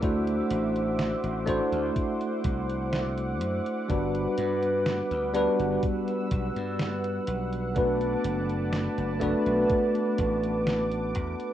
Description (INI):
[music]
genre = vaporwave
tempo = 62 BPM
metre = 4/4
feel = straight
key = unclear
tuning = A4 = 440 Hz
[part]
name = bell-like tine electric piano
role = accompaniment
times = 0.0-11.5 s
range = G3 to C5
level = -27 LUFS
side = equal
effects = fast stereo tremolo, lush chorus, tape echo
[part]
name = lush unison pad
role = sustained chords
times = 0.0-11.5 s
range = B4 to E6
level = -34 LUFS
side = right 1 dB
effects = chorus
[part]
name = slap bass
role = bass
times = 0.0-11.3 s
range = F#1 to G2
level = -33 LUFS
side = equal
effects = none
[part]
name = detuned 8-bit digital drum machine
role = drums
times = 0.0-11.5 s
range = hi-hat, snare drum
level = -34 LUFS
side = equal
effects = vintage 12-bit sampler grit
[part]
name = electronic kick drum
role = drums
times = 0.0-11.4 s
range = none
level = -31 LUFS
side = equal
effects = vintage 12-bit sampler grit
[sound]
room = wet studio reverb, RT60 0.5 s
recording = rough home demo mix, cassette tape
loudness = -25 LUFS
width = side -11 dB against mid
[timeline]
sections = 0.0-11.5 A section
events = none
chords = 0.0 D9; 3.9 Gmaj7; 7.8 Bm7